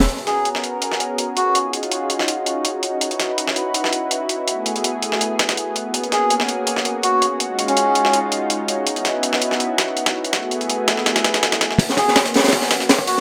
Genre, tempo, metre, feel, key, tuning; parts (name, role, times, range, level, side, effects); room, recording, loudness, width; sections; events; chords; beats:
drum and bass, jungle; 164 BPM; 4/4; straight; G# minor; A4 = 440 Hz
lush unison pad; sustained chords; 0.0-13.2 s; G#3 to B4; -25 LUFS; equal; chorus, vintage 12-bit sampler grit
soft dub sub bass; bass; 0.0-0.1, 11.8-13.2 s; G#1 to A#1; -32 LUFS; equal; tube saturation, high-pass filter
crunchy breakbeat drum kit; drums; 0.0-0.1, 11.8-13.2 s; hi-hat, kick drum, snare drum; -18 LUFS; equal; high-pass filter on kick, high-pass filter on hats, high-pass filter on snare, high-pass filter on room
dusty soul sampler-style drum kit; drums; 0.1-13.2 s; hi-hat, snare drum; -22 LUFS; equal; high-pass filter on hats, high-pass filter on snare
melodica; melody; 0.3-1.6, 6.1-8.2, 12.0-13.2 s; C#4 to G#4; -24 LUFS; equal; low-pass filter, dub echo
moderate echo chamber reverb, RT60 1.5 s, small room ambience; -19 LUFS; mono
0.1-11.8 A section; 11.8-13.2 B section
build-up 11.8-13.2; filter sweep on melodica 11.8-13.2
0.1 G#m11; 1.6 D#m11; 3.0 C#m11; 4.5 F#m11; 5.9 G#m11; 7.4 D#m11; 8.9 C#m11; 10.3 F#m11; 11.8 G#m11
| 0.09 0.45 0.82 1.19 | 1.55 1.92 2.28 2.65 | 3.02 3.38 3.75 4.11 | 4.48 4.84 5.21 5.58 | 5.94 6.31 6.67 7.04 | 7.41 7.77 8.14 8.50 | 8.87 9.23 9.60 9.97 | 10.33 10.70 11.06 11.43 | 11.79 12.16 12.53 12.89